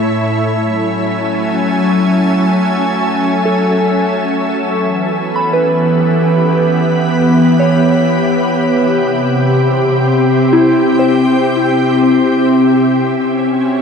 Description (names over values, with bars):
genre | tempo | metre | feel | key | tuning
ambient | free time | none | none | unclear | A4 = 440 Hz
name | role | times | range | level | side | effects
soft additive organ-like pad | sustained chords | 0.0-13.8 s | A2 to B5 | -11 LUFS | equal | ensemble chorus, built-in reverb
soft synth bell | arpeggios | 0.0-13.8 s | E4 to B5 | -18 LUFS | equal | chorus, ping-pong delay
analog drone | drone | 0.0-4.7 s | A3 to A4 | -27 LUFS | right 1 dB | none
room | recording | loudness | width
wet huge ambient reverb, RT60 6.9 s | dark, warm production | -11 LUFS | side -6 dB against mid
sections
0.0-4.6 A section; 4.6-13.8 B section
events
none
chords
0.5 F#m7; 4.6 Em; 8.7 C; 12.9 F#m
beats
free time